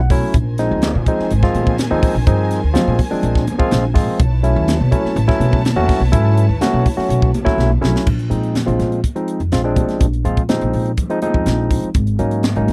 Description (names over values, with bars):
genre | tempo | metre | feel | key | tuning
electric jazz fusion | 124 BPM | 4/4 | straight | unclear | A4 = 442 Hz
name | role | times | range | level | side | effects
barky tine electric piano | accompaniment | 0.0-12.7 s | F3 to E5 | -21 LUFS | equal | overdrive
upright bass | bass | 0.0-12.7 s | Ab1 to B2 | -20 LUFS | equal | none
crisp fusion drum kit | drums | 0.1-12.7 s | crash cymbal, hi-hat, kick drum, snare drum | -20 LUFS | equal | none
rich studio string section | sustained chords | 0.3-8.0 s | Eb3 to A5 | -31 LUFS | equal | none
congas | percussion | 0.3-12.7 s | none | -27 LUFS | equal | none
room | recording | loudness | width
little or no reverb | dry, close 1970s-style studio recording | -16 LUFS | mono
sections
0.0-8.1 A section; 8.1-12.7 B section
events
tine electric piano fill 0.0-0.3; drum fill 7.6-8.1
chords
0.3 Bb9sus4; 4.2 B9sus4; 8.1 Bb9sus4; 12.0 Ab9sus4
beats
| 0.34 0.83 1.31 1.79 | 2.27 2.76 3.24 3.72 | 4.20 4.69 5.17 5.65 | 6.14 6.62 7.10 7.59 | 8.07 8.56 9.04 9.53 | 10.01 10.50 10.98 11.47 | 11.96 12.44